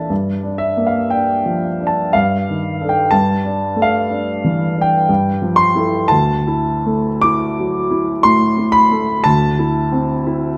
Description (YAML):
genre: classical, impressionist solo piano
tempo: 59 BPM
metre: 3/4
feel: rubato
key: D minor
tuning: A4 = 440 Hz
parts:
  - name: clear grand piano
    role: solo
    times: 0.0-10.6 s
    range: D2 to D6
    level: -16 LUFS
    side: equal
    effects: none
room: moderate scoring stage reverb, RT60 1.9 s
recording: none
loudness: -16 LUFS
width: mono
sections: 0.0-10.6 A section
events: none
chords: 0.1 Gm7; 2.1 Ebmaj7#11/G; 3.1 Dmadd9/G; 5.1 Fmaj7/G; 6.1 Dadd9; 9.3 Am/D